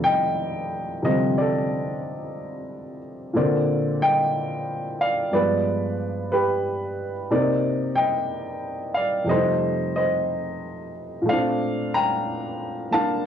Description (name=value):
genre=solo jazz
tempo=61 BPM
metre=4/4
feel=swing 66% on 8ths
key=Bb major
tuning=A4 = 441 Hz
part: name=warm baby grand piano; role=solo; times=0.0-13.3 s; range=F2 to Bb5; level=-22 LUFS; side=equal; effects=cassette tape
room=moderate small room reverb, RT60 0.5 s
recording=home recording on cassette, small room ambience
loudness=-21 LUFS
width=side -8 dB against mid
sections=0.0-13.3 A section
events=none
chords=0.0 F13; 3.3 Bbadd9; 5.3 G7b9; 7.3 Cm9; 9.3 F9; 11.3 Bbmaj9